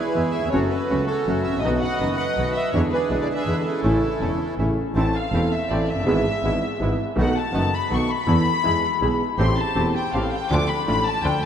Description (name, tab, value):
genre	tango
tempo	163 BPM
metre	3/4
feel	rubato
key	A major, A minor from 5.0 s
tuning	A4 = 440 Hz
part	bandoneon	melody	0.0-4.5 s	C#4 to F#5	-27 LUFS	right 2 dB	none
part	warm studio violin section	second line	0.0-11.5 s	A4 to D6	-26 LUFS	left 3 dB	none
part	clear concert grand piano	accompaniment	0.1-11.4 s	E1 to A4	-24 LUFS	equal	none
part	bandoneon	stabs	0.1-11.4 s	G#3 to G4	-32 LUFS	right 1 dB	none
part	clear double bass	bass	0.2-11.5 s	E1 to E2	-26 LUFS	right 1 dB	none
room	wet cathedral reverb, RT60 5.7 s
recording	in a vast, echoing space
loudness	-19 LUFS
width	side -8 dB against mid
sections	0.0-5.0 A section; 5.0-11.5 B section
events	violin section solo 5.0-11.5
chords	0.0 E; 0.5 F#m; 1.6 B; 2.7 E7; 3.8 A; 5.0 Am; 6.1 E/G#; 7.2 B7; 8.3 Esus4; 8.6 E; 9.4 Am7; 10.5 Dm